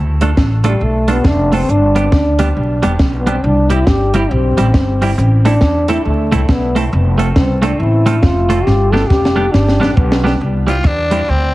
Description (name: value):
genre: ska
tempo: 137 BPM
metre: 4/4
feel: swing 62% on 8ths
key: C major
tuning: A4 = 440 Hz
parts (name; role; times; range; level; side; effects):
- upright bass; bass; 0.0-11.5 s; E1 to E2; -15 LUFS; equal; none
- clean electric guitar; accompaniment; 0.2-11.3 s; G3 to A4; -19 LUFS; right 2 dB; spring reverb, plate reverb
- compact cocktail drum kit; drums; 0.2-11.2 s; hi-hat, kick drum, rim click, snare drum; -15 LUFS; equal; none
- mellow trombone; melody; 0.7-10.4 s; G3 to A4; -17 LUFS; left 1 dB; analog delay, plate reverb
- raspy tenor saxophone; melody; 10.7-11.5 s; C4 to F4; -16 LUFS; left 1 dB; analog delay, plate reverb
room: light reverb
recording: heavily compressed radio sound, multiband compression, vinyl crackle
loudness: -11 LUFS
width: side -18 dB against mid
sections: 0.0-10.4 A section; 10.4-11.5 B section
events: trombone solo 0.0-10.4; drum fill 8.7-10.4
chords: 0.0 Dm; 1.7 G; 3.4 C; 5.2 Am; 6.9 F; 8.7 G; 10.4 C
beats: 0.38 0.81 1.25 | 1.69 2.12 2.56 3.00 | 3.43 3.87 4.31 4.74 | 5.18 5.62 6.05 6.49 | 6.92 7.36 7.80 8.23 | 8.67 9.11 9.54 9.98 | 10.42 10.85 11.29